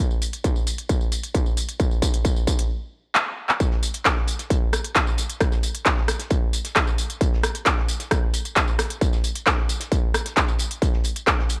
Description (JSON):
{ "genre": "techno", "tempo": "133 BPM", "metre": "4/4", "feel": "straight", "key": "none", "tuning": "none", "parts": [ { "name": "techno drum kit", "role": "drums", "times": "0.1-11.6 s", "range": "handclaps, hi-hat, rim click, tambourine", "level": "-26 LUFS", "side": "equal", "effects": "none" }, { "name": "electronic kick drum", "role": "drums", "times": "0.4-11.4 s", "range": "none", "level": "-24 LUFS", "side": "equal", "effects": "distortion" }, { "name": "modern studio drum kit", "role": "drums", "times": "3.6-11.6 s", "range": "hi-hat, snare drum", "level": "-42 LUFS", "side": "equal", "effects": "none" } ], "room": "light reverb", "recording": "dry, gritty hardware recording, cassette tape", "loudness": "-23 LUFS", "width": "mono", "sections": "0.0-3.6 A section; 3.6-11.6 B section", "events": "build-up 0.0-3.6; drum fill 0.0-2.7, 3.1-3.6; stop 2.7-3.6; drop 3.6-11.6", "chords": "none" }